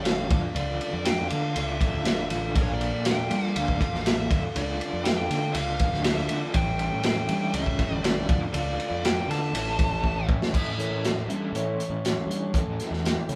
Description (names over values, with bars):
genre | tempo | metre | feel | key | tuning
psychedelic rock | 120 BPM | 4/4 | straight | A phrygian dominant | A4 = 441 Hz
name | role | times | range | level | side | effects
fuzz lead guitar | melody | 0.0-10.3 s | C#5 to A5 | -34 LUFS | equal | distortion
combo organ | sustained chords | 0.0-13.4 s | E3 to F5 | -40 LUFS | equal | none
crunchy overdriven guitar | riff | 0.0-13.4 s | A2 to F4 | -34 LUFS | equal | tremolo
fuzz picked electric bass | bass | 0.0-13.4 s | G1 to D3 | -33 LUFS | equal | overdrive
crunchy breakbeat drum kit | drums | 0.1-13.4 s | crash cymbal, hi-hat, kick drum, ride cymbal, snare drum | -29 LUFS | equal | none
room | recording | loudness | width
moderate studio reverb, RT60 0.7 s | band playing live in one room | -26 LUFS | mono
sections
0.0-10.5 A section; 10.5-13.4 B section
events
drum fill 10.0-10.5; transistor combo organ solo 10.5-13.4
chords
0.3 Dmadd9; 2.6 Bbmaj7; 4.3 Dm; 6.5 A7; 8.3 Dm; 9.5 A